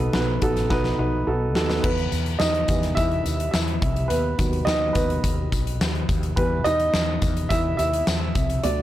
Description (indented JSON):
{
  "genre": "piano-driven pop",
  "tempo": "106 BPM",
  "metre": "4/4",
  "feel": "straight",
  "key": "E harmonic minor",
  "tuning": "A4 = 439 Hz",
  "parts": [
    { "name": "dark upright piano", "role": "accompaniment", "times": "0.0-8.8 s", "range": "B2 to E5", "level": "-24 LUFS", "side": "right 1 dB", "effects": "none" },
    { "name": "woody fretless electric bass", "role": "bass", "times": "0.0-8.8 s", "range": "A1 to E2", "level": "-26 LUFS", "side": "left 1 dB", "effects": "wide subtle chorus" },
    { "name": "huge arena drum kit", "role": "drums", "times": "0.1-8.8 s", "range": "crash cymbal, hi-hat, kick drum, snare drum", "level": "-25 LUFS", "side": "left 1 dB", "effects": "none" },
    { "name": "tambourine", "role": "percussion", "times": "2.1-8.8 s", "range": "none", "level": "-38 LUFS", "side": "left 8 dB", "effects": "none" }
  ],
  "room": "light reverb, small room ambience",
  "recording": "blown-out, overdriven recording, overdrive",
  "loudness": "-20 LUFS",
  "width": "side -13 dB against mid",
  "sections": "0.0-1.8 A section; 1.8-8.8 B section",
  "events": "drum fill 0.7-1.8; upright piano solo 1.8-8.8",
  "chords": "0.0 B; 1.8 Em; 4.1 B/D#; 6.4 Em"
}